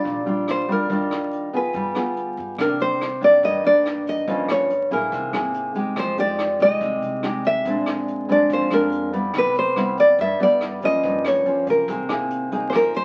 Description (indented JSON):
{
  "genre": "bossa nova",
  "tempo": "142 BPM",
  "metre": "4/4",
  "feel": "straight",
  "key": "C minor",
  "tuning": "A4 = 440 Hz",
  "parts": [
    { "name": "nylon-string guitar", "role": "melody", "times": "0.0-13.0 s", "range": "Bb4 to E5", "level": "-22 LUFS", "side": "equal", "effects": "none" },
    { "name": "nylon-string guitar", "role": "accompaniment", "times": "0.0-13.0 s", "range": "G2 to Ab4", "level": "-26 LUFS", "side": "equal", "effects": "none" },
    { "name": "upright bass", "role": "bass", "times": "0.1-13.0 s", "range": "G1 to G2", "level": "-43 LUFS", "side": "equal", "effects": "none" },
    { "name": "jazz brush drum kit", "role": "drums", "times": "0.1-13.0 s", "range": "hi-hat, kick drum, rim click", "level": "-36 LUFS", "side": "equal", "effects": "none" }
  ],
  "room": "wet studio reverb, RT60 0.5 s",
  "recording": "very old 78 rpm record, vinyl crackle",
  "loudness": "-21 LUFS",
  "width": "mono",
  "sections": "0.0-2.6 A section; 2.6-13.0 B section",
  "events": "none",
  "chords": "0.0 Ebmaj9; 1.7 G7b9; 2.6 Cm9; 4.3 Gm7b5; 5.1 C7alt; 6.0 Fm9; 7.7 Bb9; 9.3 Cmaj7; 11.0 Gm7b5; 11.9 C7alt"
}